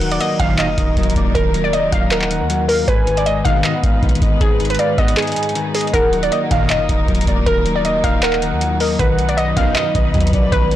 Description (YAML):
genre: hip hop, trap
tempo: 157 BPM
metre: 4/4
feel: half-time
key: Eb minor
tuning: A4 = 440 Hz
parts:
  - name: warbly dusty pluck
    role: melody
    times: 0.0-10.8 s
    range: Ab4 to F5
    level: -19 LUFS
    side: right 1 dB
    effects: chorus, phaser, digital delay
  - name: warm velvety synth lead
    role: second line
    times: 0.0-10.5 s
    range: D5 to Ab5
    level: -26 LUFS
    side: right 1 dB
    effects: chorus, digital delay
  - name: electric guitar at the edge of break-up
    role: accompaniment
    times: 0.0-10.8 s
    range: Ab2 to Eb5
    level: -23 LUFS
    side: left 4 dB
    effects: lush chorus
  - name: warm studio string section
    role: sustained chords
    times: 0.0-10.8 s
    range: Gb3 to Cb5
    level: -27 LUFS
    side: equal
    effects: none
  - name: clean 808-style bass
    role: bass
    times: 0.0-10.8 s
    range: Eb1 to Eb2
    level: -21 LUFS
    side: equal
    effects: none
  - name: booming analog drum machine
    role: drums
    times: 0.0-10.8 s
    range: handclaps, hi-hat, kick drum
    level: -19 LUFS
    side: equal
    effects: none
  - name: big bright polysynth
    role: stabs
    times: 0.4-0.7, 3.5-3.7, 6.5-6.8, 9.6-9.8 s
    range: Gb2 to Eb3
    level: -22 LUFS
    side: left 1 dB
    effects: chorus
room: digital ambience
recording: blown-out, overdriven recording, overdrive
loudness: -14 LUFS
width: side -12 dB against mid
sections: 0.0-10.8 A section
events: break 5.2-5.9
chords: 0.0 Ebm; 2.9 Abm; 5.9 Ebm; 9.0 B